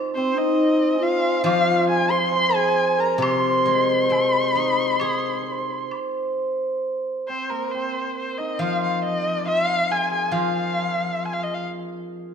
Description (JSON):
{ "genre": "chinese traditional, Chinese chamber ensemble", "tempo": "69 BPM", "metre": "4/4", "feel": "rubato", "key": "C jue mode", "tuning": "A4 = 440 Hz", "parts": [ { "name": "hammered dulcimer", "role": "second line", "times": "0.0-12.3 s", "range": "Bb3 to C5", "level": "-25 LUFS", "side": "right 5 dB", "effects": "none" }, { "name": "steel-string zither", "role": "accompaniment", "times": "0.0-12.3 s", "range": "C3 to Ab4", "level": "-27 LUFS", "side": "left 4 dB", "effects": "none" }, { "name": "warm erhu", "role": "melody", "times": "0.2-11.6 s", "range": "Bb4 to C6", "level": "-23 LUFS", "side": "left 2 dB", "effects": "none" }, { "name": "mellow low xiao", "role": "second line", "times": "0.2-5.9 s", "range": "C4 to C5", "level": "-24 LUFS", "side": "left 4 dB", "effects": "none" }, { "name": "woodblock", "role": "percussion", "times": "1.5-6.1 s", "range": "none", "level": "-34 LUFS", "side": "left 1 dB", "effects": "none" } ], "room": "wet recital hall reverb, RT60 1.8 s", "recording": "none", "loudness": "-20 LUFS", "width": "side -7 dB against mid", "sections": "0.0-6.8 A section; 6.8-12.3 B section", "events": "none", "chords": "none" }